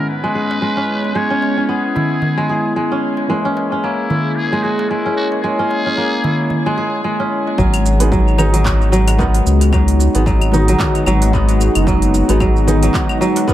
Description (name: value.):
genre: organic downtempo.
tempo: 112 BPM.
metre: 4/4.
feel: swing 57% on 16ths.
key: G# minor.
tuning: A4 = 444 Hz.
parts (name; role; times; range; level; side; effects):
trumpet with metal mute; melody; 0.0-7.0 s; E4 to C#5; -24 LUFS; left 1 dB; tape echo.
felt-muted upright piano; accompaniment; 0.0-13.5 s; G#2 to A#4; -25 LUFS; right 2 dB; sidechain pumping, dub echo.
warm analog pad; sustained chords; 0.0-13.5 s; G#3 to C#5; -21 LUFS; left 1 dB; chorus, sidechain pumping.
kora; arpeggios; 0.0-13.5 s; F#3 to G#4; -19 LUFS; equal; low-pass filter, dub echo.
darbuka; percussion; 0.5-13.5 s; none; -24 LUFS; equal; dub echo.
round analog bass; bass; 7.6-12.9 s; F#1 to C#2; -14 LUFS; equal; sidechain pumping.
electronic kick drum; drums; 7.6-13.5 s; none; -20 LUFS; equal; overdrive, small room reverb.
organic electronic drum kit; drums; 7.6-13.5 s; claves, handclaps, hi-hat, shaker; -25 LUFS; equal; overdrive, small room reverb, dub echo.
room: moderate spring reverb, RT60 1.6 s.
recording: echo-heavy mix.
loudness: -13 LUFS.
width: side -13 dB against mid.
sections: 0.0-7.6 A section; 7.6-13.5 B section.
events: filter sweep on analog synth pad 0.0-7.6.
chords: 0.0 C#m7/G#; 3.3 A#m7b5; 7.6 G#m7.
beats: 0.08 0.62 | 1.15 1.69 2.23 2.76 | 3.30 3.83 4.37 4.90 | 5.44 5.98 6.51 7.05 | 7.58 8.12 8.65 9.19 | 9.73 10.26 10.80 11.33 | 11.87 12.40 12.94 13.48.